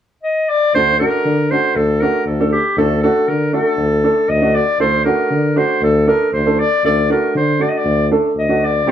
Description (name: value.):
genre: klezmer.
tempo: 118 BPM.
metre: 4/4.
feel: straight.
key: D phrygian dominant.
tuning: A4 = 444 Hz.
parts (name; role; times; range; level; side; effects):
warm clarinet; melody; 0.2-8.9 s; G4 to Eb5; -16 LUFS; left 2 dB; none.
warm tuba; bass; 0.7-8.9 s; C2 to D3; -18 LUFS; equal; none.
clear upright piano; accompaniment; 0.8-8.9 s; A3 to A4; -18 LUFS; right 2 dB; none.
room: moderate studio reverb, RT60 0.8 s.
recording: band playing live in one room.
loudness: -13 LUFS.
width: side -9 dB against mid.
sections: 0.8-8.9 A section.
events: none.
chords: 0.0 N.C.; 0.8 D.